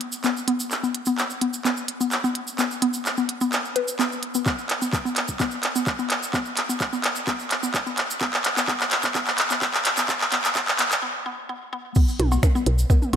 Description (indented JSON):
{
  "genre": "minimal techno",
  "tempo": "128 BPM",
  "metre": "4/4",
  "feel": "straight",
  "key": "unclear",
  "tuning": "A4 = 440 Hz",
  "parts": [
    { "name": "minimal click drum kit", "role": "drums", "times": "0.0-13.2 s", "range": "crash cymbal, finger snaps, handclaps, hi-hat", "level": "-24 LUFS", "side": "equal", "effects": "high-pass filter on snare, high-pass filter on hats, high-pass filter on cymbals" },
    { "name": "cabasa", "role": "percussion", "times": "0.1-13.1 s", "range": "none", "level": "-33 LUFS", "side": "right 3 dB", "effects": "none" },
    { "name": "mallet-like synth pluck", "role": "riff", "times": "0.2-13.2 s", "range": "B3 to B4", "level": "-27 LUFS", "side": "left 2 dB", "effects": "chorus, sidechain pumping, dub echo" },
    { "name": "electronic kick drum", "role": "drums", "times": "4.5-13.0 s", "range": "none", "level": "-21 LUFS", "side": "equal", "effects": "none" },
    { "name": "woody FM bass", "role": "bass", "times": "12.2-13.2 s", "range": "B1", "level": "-20 LUFS", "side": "equal", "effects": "sidechain pumping" },
    { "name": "electronic toms, percussion blips and cowbell", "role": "percussion", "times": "12.2-13.2 s", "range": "none", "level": "-27 LUFS", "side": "right 4 dB", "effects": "dub echo" }
  ],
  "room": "moderate lush hall reverb, RT60 1.9 s",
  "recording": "high-pass filter",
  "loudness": "-21 LUFS",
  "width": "side -8 dB against mid",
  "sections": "0.0-12.0 A section; 12.0-13.2 B section",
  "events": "build-up 0.0-12.0; drum fill 0.0-11.0; filter sweep on synth arpeggio sound 0.0-12.0; break 11.0-12.0; drop 12.0-13.2",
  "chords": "none"
}